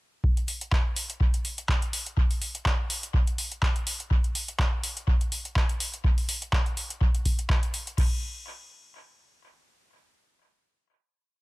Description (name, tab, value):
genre	house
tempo	124 BPM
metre	4/4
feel	swing 55% on 16ths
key	none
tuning	none
part	electronic kick drum	drums	0.2-8.1 s	none	-24 LUFS	equal	none
part	booming analog drum machine	drums	0.4-8.1 s	crash cymbal, handclaps, hi-hat	-31 LUFS	equal	tape echo
room	digital ambience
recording	echo-heavy mix, lossy compression artefacts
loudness	-24 LUFS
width	side -22 dB against mid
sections	0.2-8.0 groove; 8.0-9.9 final hit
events	none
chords	none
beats	| 0.24 0.72 1.21 1.69 | 2.17 2.66 3.14 3.63 | 4.11 4.59 5.08 5.56 | 6.04 6.53 7.01 7.50 | 7.98